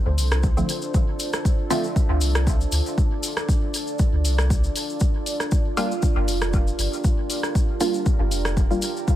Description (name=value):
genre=dub techno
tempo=118 BPM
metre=4/4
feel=swing 54% on 16ths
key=D minor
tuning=A4 = 439 Hz
part: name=deep dark ambient pad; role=sustained chords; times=0.0-9.2 s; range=D4 to D5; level=-29 LUFS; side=right 2 dB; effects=chorus, built-in reverb, sidechain pumping
part: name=filtered dub chord stab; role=stabs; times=0.0-1.9, 5.8-8.8 s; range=D3 to F4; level=-27 LUFS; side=right 1 dB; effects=chorus, phaser, cassette tape, sidechain pumping, dub echo
part: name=round analog bass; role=bass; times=0.1-8.8 s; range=F1 to D2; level=-22 LUFS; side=equal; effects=sidechain pumping
part: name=deep house drum kit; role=drums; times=0.2-8.9 s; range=hi-hat, rim click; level=-29 LUFS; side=equal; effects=none
part: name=cabasa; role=percussion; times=0.2-9.2 s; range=none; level=-34 LUFS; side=left 4 dB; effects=none
part: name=electronic kick drum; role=drums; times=0.4-9.2 s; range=none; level=-21 LUFS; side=equal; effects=none
room=little or no reverb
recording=none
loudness=-20 LUFS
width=side -13 dB against mid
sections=0.0-9.2 A section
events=none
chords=0.0 Dm7; 5.5 Gm7